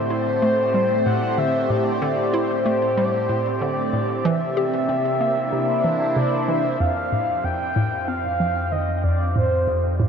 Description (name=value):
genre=ambient, sequencer-driven space music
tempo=94 BPM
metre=4/4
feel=straight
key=unclear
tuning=A4 = 440 Hz
part: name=breathy flute-like synth lead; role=melody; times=0.0-10.0 s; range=C5 to G5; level=-23 LUFS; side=left 1 dB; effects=wide subtle chorus, cassette tape, ping-pong delay
part: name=phased analog pad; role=sustained chords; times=0.0-10.1 s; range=A2 to C5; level=-25 LUFS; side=equal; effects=phaser, chorus
part: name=wind-like tuned noise texture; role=texture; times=0.0-10.1 s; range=C4 to D5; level=-33 LUFS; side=right 3 dB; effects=built-in reverb
part: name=hollow square pluck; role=riff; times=0.1-10.1 s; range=F2 to G4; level=-25 LUFS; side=equal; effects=chorus, ping-pong delay
part: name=warm sub bass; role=bass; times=6.8-10.1 s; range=F2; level=-25 LUFS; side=equal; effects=none
room=wet huge ambient reverb, RT60 9.3 s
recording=none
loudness=-19 LUFS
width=side -7 dB against mid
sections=0.0-6.8 A section; 6.8-10.1 B section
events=none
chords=0.0 Am7; 4.3 C7; 6.8 F7